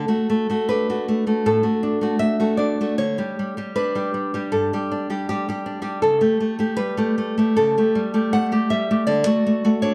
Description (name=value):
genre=romantic piece for solo classical guitar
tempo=79 BPM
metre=4/4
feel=rubato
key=D major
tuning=A4 = 440 Hz
part: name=nylon-string guitar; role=solo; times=0.0-9.9 s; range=G2 to F#5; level=-21 LUFS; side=equal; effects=none
room=wet recital hall reverb, RT60 1.5 s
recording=dark, warm production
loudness=-21 LUFS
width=mono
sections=0.0-9.9 A section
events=none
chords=0.0 D; 3.0 G/D; 6.0 A7(no3); 9.1 D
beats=0.68 1.45 2.22 | 3.00 3.78 4.54 5.29 | 6.04 6.80 7.57 8.33 | 9.08 9.82